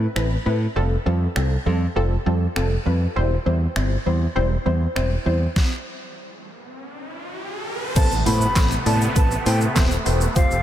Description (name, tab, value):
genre	dance-pop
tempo	100 BPM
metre	4/4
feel	straight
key	A minor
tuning	A4 = 440 Hz
part	punchy chord stab	accompaniment	0.0-10.6 s	G3 to D5	-26 LUFS	equal	chorus, sidechain pumping
part	modern bright fingered electric bass	bass	0.0-10.6 s	D#1 to A2	-21 LUFS	equal	sidechain pumping
part	pop drum kit	drums	0.2-10.6 s	crash cymbal, finger snaps, handclaps, hi-hat, kick drum, shaker, snare drum	-24 LUFS	equal	overdrive
part	riser and impact	sound effects	6.5-10.4 s	none	-31 LUFS	equal	none
part	breathy mellow silver concert flute	melody	8.0-10.6 s	F5 to B5	-26 LUFS	right 1 dB	ping-pong delay
part	filtered supersaw swell	sustained chords	8.0-10.6 s	C3 to A4	-27 LUFS	right 1 dB	sidechain pumping
part	egg shaker	percussion	8.0-10.6 s	none	-38 LUFS	left 10 dB	none
room	light reverb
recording	none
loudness	-18 LUFS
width	side -11 dB against mid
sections	0.0-8.0 A section; 8.0-10.6 B section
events	stop 5.6-8.0; riser 6.5-8.0; drop 8.0-10.6; impact 8.0-10.4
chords	0.0 Amadd9; 0.8 Fadd9; 3.2 C/E; 5.6 N.C.; 8.0 Amadd9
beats	0.16 | 0.76 1.36 1.96 2.56 | 3.16 3.76 4.36 4.96 | 5.56 6.16 6.76 7.36 | 7.96 8.56 9.16 9.76 | 10.36